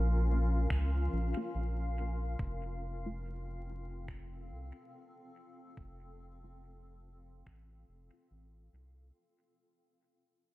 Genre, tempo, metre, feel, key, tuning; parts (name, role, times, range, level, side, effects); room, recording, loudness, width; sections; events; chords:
ambient dub; 71 BPM; 4/4; swing 58% on 16ths; A4 = 438 Hz
granular cloud pad; sustained chords; 0.0-9.2 s; C4 to F5; -43 LUFS; left 1 dB; built-in reverb
round analog bass; bass; 0.0-9.1 s; F1 to Db2; -34 LUFS; equal
electronic finger snaps; drums; 0.7-7.7 s; -50 LUFS; equal; low-pass filter on snare, low-pass filter on room, dub echo
electronic kick drum; drums; 0.7-7.7 s; -40 LUFS; equal
filtered dub chord stab; stabs; 1.4-8.3 s; A3 to F4; -46 LUFS; left 2 dB; phaser, analog chorus, dub echo
little or no reverb; dark, warm production, vinyl crackle; -33 LUFS; side -18 dB against mid
0.0-9.2 A section
fade-out 0.0-9.2; filter sweep on analog synth bass 0.0-9.2; filter sweep on synth stab 0.0-9.2
0.0 Bbm; 2.4 F